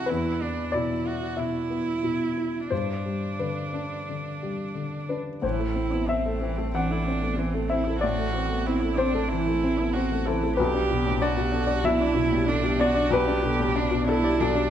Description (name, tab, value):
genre	neoclassical piano and strings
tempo	93 BPM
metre	4/4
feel	rubato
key	A dorian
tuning	A4 = 440 Hz
part	warm cello	second line	0.0-14.7 s	C4 to G4	-29 LUFS	right 5 dB	none
part	dark baby grand piano	accompaniment	0.0-14.7 s	B1 to F#5	-26 LUFS	left 3 dB	none
part	dark viola	accompaniment	5.4-14.7 s	D3 to E4	-31 LUFS	right 2 dB	none
part	sub bass with octave	bass	5.4-14.7 s	A1 to B1	-31 LUFS	right 1 dB	none
room	moderate recital hall reverb, RT60 1.5 s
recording	recorded in a church or concert hall, nothing above 11.0 kHz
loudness	-23 LUFS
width	side -10 dB against mid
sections	0.0-5.4 A section; 5.4-14.7 A section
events	none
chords	0.1 E5; 2.7 G; 5.4 Am; 10.6 G/B